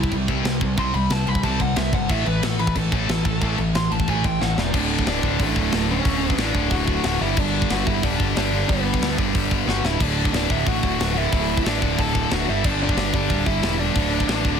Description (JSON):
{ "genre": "punk rock", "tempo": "182 BPM", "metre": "4/4", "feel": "straight", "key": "D major", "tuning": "A4 = 439 Hz", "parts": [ { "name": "dark smooth lead guitar", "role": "melody", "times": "0.0-14.6 s", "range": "A3 to C6", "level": "-26 LUFS", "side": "equal", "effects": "overdrive, digital delay" }, { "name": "crunchy overdriven guitar", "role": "riff", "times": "0.0-14.6 s", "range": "D2 to C4", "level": "-27 LUFS", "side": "right 11 dB", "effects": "none" }, { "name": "distorted electric guitar", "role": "riff", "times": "0.0-14.6 s", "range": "D2 to C4", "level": "-26 LUFS", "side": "left 14 dB", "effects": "overdrive" }, { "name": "high-gain distorted guitar", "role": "riff", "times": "0.0-14.6 s", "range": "D2 to C4", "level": "-31 LUFS", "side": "left 1 dB", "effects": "none" }, { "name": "fuzz picked electric bass", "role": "bass", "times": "0.0-14.6 s", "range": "D1 to D2", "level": "-26 LUFS", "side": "equal", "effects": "overdrive" }, { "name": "tight metal drum kit", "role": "drums", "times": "0.0-14.5 s", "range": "crash cymbal, hi-hat, kick drum, snare drum", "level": "-25 LUFS", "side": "equal", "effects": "soft clipping on kick" } ], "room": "little or no reverb", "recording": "dense, heavily limited modern master", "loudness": "-19 LUFS", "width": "side -7 dB against mid", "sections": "0.0-4.7 A section; 4.7-14.6 B section", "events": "lead electric guitar solo 0.0-4.7; drum fill 4.4-4.7, 9.7-10.0", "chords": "0.0 C5; 2.1 A5; 4.7 D; 7.2 G; 10.0 D; 12.5 G5; 14.0 D5" }